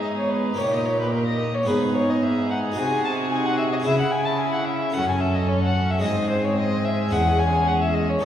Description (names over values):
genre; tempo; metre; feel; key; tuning
classical, baroque-style concerto movement with solo episodes; 110 BPM; 4/4; straight; C# minor; A4 = 440 Hz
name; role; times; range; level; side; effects
dark violin; melody; 0.0-8.2 s; A#4 to A5; -25 LUFS; left 2 dB; none
rich chamber violin section; melody; 0.0-8.2 s; G4 to A4; -33 LUFS; left 2 dB; none
warm chamber violin section; second line; 0.0-8.2 s; B#3 to F#4; -29 LUFS; left 2 dB; none
dark chamber viola section; accompaniment; 0.0-8.2 s; G#3 to D#4; -29 LUFS; right 2 dB; none
harpsichord; accompaniment; 0.0-8.2 s; E2 to A4; -30 LUFS; left 1 dB; none
rich chamber cello section; bass; 0.0-8.2 s; E2 to C#3; -25 LUFS; right 1 dB; none
room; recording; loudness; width
wet recital hall reverb, RT60 1.8 s; heard from further back in the room, lossy compression artefacts; -20 LUFS; side -10 dB against mid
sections
0.0-8.2 A section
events
none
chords
0.0 G#m; 0.6 D#/A#; 1.7 G#m; 2.8 G#7/B#; 3.9 C#m; 4.9 F#m; 6.0 G#; 7.1 C#m/E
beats
0.04 | 0.59 1.13 1.68 2.22 | 2.76 3.31 3.85 4.40 | 4.94 5.49 6.04 6.58 | 7.13 7.68 8.22